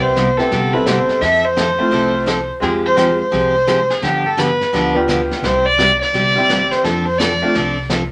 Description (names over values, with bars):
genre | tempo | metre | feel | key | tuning
country, western swing | 170 BPM | 4/4 | swing 64% on 8ths | C major | A4 = 436 Hz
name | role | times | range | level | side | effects
rich fiddle | melody | 0.0-7.8 s | G4 to E5 | -18 LUFS | equal | none
picked steel-string acoustic guitar | accompaniment | 0.0-8.0 s | C3 to A4 | -23 LUFS | equal | none
tack piano | accompaniment | 0.0-7.5 s | G3 to A4 | -22 LUFS | equal | none
upright bass | bass | 0.0-8.1 s | G1 to G2 | -30 LUFS | equal | none
jazz brush drum kit | drums | 0.2-8.1 s | brushed snare drum, hi-hat, snare drum | -27 LUFS | equal | none
room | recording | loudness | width
wet small room ambience, RT60 0.5 s | none | -16 LUFS | mono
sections
0.0-8.1 A section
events
none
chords
0.0 Cmaj7; 1.2 Fmaj7; 2.6 Fmadd9; 4.0 G7; 5.4 C; 6.8 F6